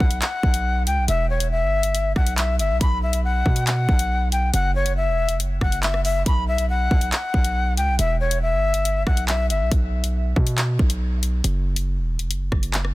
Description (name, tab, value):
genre	hip hop, drill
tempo	139 BPM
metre	4/4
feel	half-time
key	unclear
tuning	A4 = 439 Hz
part	breathy reedy jazz flute	melody	0.0-9.7 s	C#5 to B5	-24 LUFS	left 3 dB	ping-pong delay
part	hard-hitting 808-style bass	bass	0.0-12.9 s	E1 to B2	-22 LUFS	equal	none
part	drill drum kit	drums	0.0-12.9 s	handclaps, hi-hat, kick drum, rim click	-22 LUFS	equal	none
room	little or no reverb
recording	dense, heavily limited modern master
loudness	-19 LUFS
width	side -18 dB against mid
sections	0.0-12.9 A section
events	none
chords	0.0 B5; 1.1 Em; 2.8 B5; 4.5 Esus2; 6.3 B5; 8.0 Em; 9.7 N.C.; 11.4 Esus2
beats	0.22 0.65 | 1.08 1.51 1.95 2.38 | 2.81 3.24 3.67 4.10 | 4.54 4.97 5.40 5.83 | 6.26 6.69 7.12 7.56 | 7.99 8.42 8.85 9.28 | 9.71 10.15 10.58 11.01 | 11.44 11.87 12.30 12.74